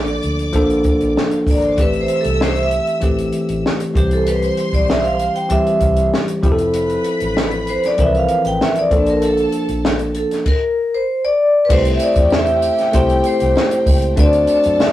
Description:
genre	lush 1970s-style soul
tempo	97 BPM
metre	4/4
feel	straight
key	C major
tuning	A4 = 440 Hz
part	dark studio string section	second line	0.0-14.9 s	F4 to E6	-28 LUFS	left 1 dB	none
part	bell-like tine electric piano	accompaniment	0.0-14.9 s	E3 to C5	-19 LUFS	left 1 dB	none
part	vintage muted fingered electric bass	bass	0.0-14.9 s	F1 to F#2	-22 LUFS	equal	none
part	compact cocktail drum kit	drums	0.1-14.9 s	crash cymbal, hi-hat, kick drum, snare drum	-19 LUFS	equal	none
part	vibraphone with hard mallets	melody	1.5-14.9 s	G4 to G5	-17 LUFS	equal	none
part	triangle	percussion	11.7-14.9 s	none	-38 LUFS	right 7 dB	none
room	moderate studio reverb, RT60 0.6 s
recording	rough rehearsal-room recording, tube saturation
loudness	-14 LUFS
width	side -14 dB against mid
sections	0.0-11.7 A section; 11.7-14.9 B section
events	vibraphone solo 0.0-11.7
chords	0.0 Bbmaj7; 1.8 Am7; 4.0 Cmaj7; 6.4 Fmaj7; 8.9 Bbmaj7; 11.7 C6; 14.2 D7

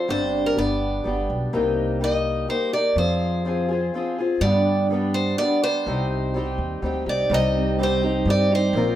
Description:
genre	acoustic folk duo or small band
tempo	125 BPM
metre	3/4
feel	straight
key	C minor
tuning	A4 = 440 Hz
part	picked acoustic archtop guitar	melody	0.0-9.0 s	Bb4 to Eb5	-24 LUFS	right 1 dB	none
part	fingerpicked twelve-string acoustic guitar	accompaniment	0.0-9.0 s	G2 to Bb4	-24 LUFS	left 2 dB	none
part	upright bass	bass	0.1-9.0 s	G1 to G2	-25 LUFS	equal	none
part	clean electric guitar	arpeggios	7.3-9.0 s	F3 to G4	-25 LUFS	right 4 dB	harmonic tremolo
room	wet studio reverb, RT60 0.5 s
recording	band playing live in one room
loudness	-20 LUFS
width	side -12 dB against mid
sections	0.0-7.3 A section; 7.3-9.0 B section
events	none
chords	0.1 Gsus4; 0.6 G; 1.5 Cm7; 3.0 Fm; 4.4 G; 5.9 Cm

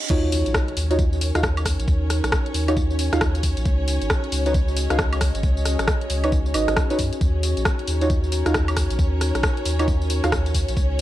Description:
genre	UK garage, two-step garage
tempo	135 BPM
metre	4/4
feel	swing 62% on 16ths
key	Eb minor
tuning	A4 = 440 Hz
part	reverse cymbal and impact	sound effects	0.0-1.9 s	none	-33 LUFS	right 1 dB	none
part	warm symphonic violin section	sustained chords	0.1-11.0 s	Db4 to Db5	-32 LUFS	left 1 dB	sidechain pumping
part	deep mellow chord stab	stabs	0.1-10.3 s	Eb4 to F5	-25 LUFS	right 1 dB	chorus, tape echo
part	saturated sub bass	bass	0.1-11.0 s	Ab1 to Gb2	-23 LUFS	equal	none
part	electronic kick drum	drums	0.1-10.9 s	none	-23 LUFS	equal	overdrive, studio reverb
part	garage drum kit	drums	0.1-11.0 s	crash cymbal, hi-hat, rim click, tambourine, woodblock	-26 LUFS	equal	studio reverb
part	warbly tape-like pad	texture	0.1-11.0 s	Db4 to Eb5	-31 LUFS	equal	chorus, built-in reverb, sidechain pumping
room	digital ambience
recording	dark, warm production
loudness	-19 LUFS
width	side -14 dB against mid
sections	0.1-11.0 A section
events	drop 0.1-11.0; impact 0.1-1.9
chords	0.1 Ebm9; 3.7 Db9sus4; 7.2 Ebm9

